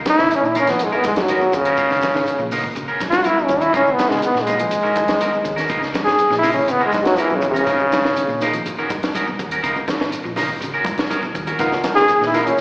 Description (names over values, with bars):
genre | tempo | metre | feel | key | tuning
afrobeat | 122 BPM | 4/4 | straight | Db mixolydian | A4 = 441 Hz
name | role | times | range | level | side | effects
bright trombone | melody | 0.1-8.5, 12.0-12.6 s | Db3 to Ab4 | -16 LUFS | equal | slapback echo
compact cocktail drum kit | drums | 0.1-12.6 s | hi-hat, kick drum, snare drum | -25 LUFS | equal | slapback echo
congas | percussion | 0.1-12.5 s | none | -29 LUFS | equal | slapback echo
shekere | percussion | 0.1-12.6 s | none | -40 LUFS | equal | slapback echo
electric guitar at the edge of break-up | arpeggios | 0.2-12.3 s | Cb3 to F3 | -32 LUFS | left 1 dB | slapback echo
electric guitar at the edge of break-up | stabs | 0.2-12.6 s | Cb4 to Bb4 | -24 LUFS | right 1 dB | spring reverb, slapback echo
hollow-body short-scale fingered electric bass | bass | 0.2-12.6 s | Gb1 to Bb2 | -32 LUFS | equal | none
barky tine electric piano | accompaniment | 11.6-12.6 s | Cb4 to Bb4 | -22 LUFS | equal | overdrive, slapback echo
room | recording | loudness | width
light reverb, small room ambience | live gig heard through the venue's PA, recital hall reverb, AM radio sound | -16 LUFS | side -25 dB against mid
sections
0.0-12.6 A section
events
trombone solo 0.0-12.6; drum fill 10.9-11.6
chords
0.0 Db13; 0.8 Abm11; 1.8 Db13; 2.8 Abm11; 3.7 Db13; 4.7 Abm11; 5.7 Db13; 6.7 Abm11; 7.7 Db13; 8.7 Abm11; 9.6 Db13; 10.6 Abm11; 11.6 Db13